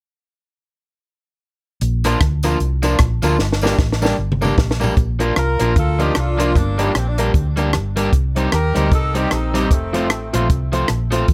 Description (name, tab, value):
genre	ska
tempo	152 BPM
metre	4/4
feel	swing 59% on 8ths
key	Bb major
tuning	A4 = 440 Hz
part	hollow-body short-scale fingered electric bass	bass	1.8-11.3 s	F1 to Eb2	-22 LUFS	equal	none
part	compact cocktail drum kit	drums	1.8-11.3 s	hi-hat, kick drum, rim click, snare drum, toms	-21 LUFS	equal	none
part	electric guitar at the edge of break-up	accompaniment	2.0-11.3 s	F3 to G4	-25 LUFS	equal	tape echo
part	dark upright piano	stabs	2.0-11.2 s	D4 to C5	-27 LUFS	equal	tape echo
part	tambourine	percussion	2.0-4.9 s	none	-38 LUFS	equal	none
part	clear horn section	melody	5.4-10.3 s	A3 to Bb4	-26 LUFS	equal	tape echo
room	light reverb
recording	none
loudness	-18 LUFS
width	mono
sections	1.8-5.0 A section; 5.0-11.3 B section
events	drum fill 3.4-5.0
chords	1.8 Bb; 3.4 Gm; 5.0 Bb; 6.5 Gm; 8.1 Cm; 9.7 F